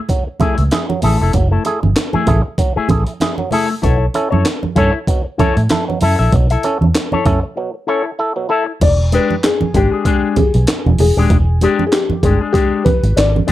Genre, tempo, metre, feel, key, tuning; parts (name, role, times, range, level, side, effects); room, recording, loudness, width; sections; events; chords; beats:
funk; 96 BPM; 4/4; swing 56% on 16ths; E mixolydian; A4 = 440 Hz
auto-wah clav; stabs; 0.1-8.6 s; B2 to A4; -20 LUFS; right 2 dB
breakbeat sampler-style drum kit; drums; 0.1-13.5 s; crash cymbal, handclaps, hi-hat, kick drum, snare drum; -17 LUFS; equal
congas; percussion; 0.1-13.5 s; -21 LUFS; right 6 dB
electric guitar with an envelope filter; accompaniment; 0.3-13.5 s; G#3 to E5; -18 LUFS; left 6 dB
vintage muted fingered electric bass; bass; 0.4-13.5 s; D#1 to A2; -14 LUFS; equal
felt-muted upright piano; melody; 8.8-13.5 s; G4 to D5; -18 LUFS; left 3 dB; tape echo
little or no reverb; -12 LUFS; side -14 dB against mid
0.0-8.8 A section; 8.8-13.5 B section
break 7.6-8.8
0.0 F#m9; 3.8 B9sus4; 8.8 E7#9
0.10 0.72 | 1.35 1.97 2.59 3.21 | 3.84 4.46 5.08 5.70 | 6.33 6.95 7.57 8.19 | 8.81 9.44 10.06 10.68 | 11.30 11.92 12.54 13.16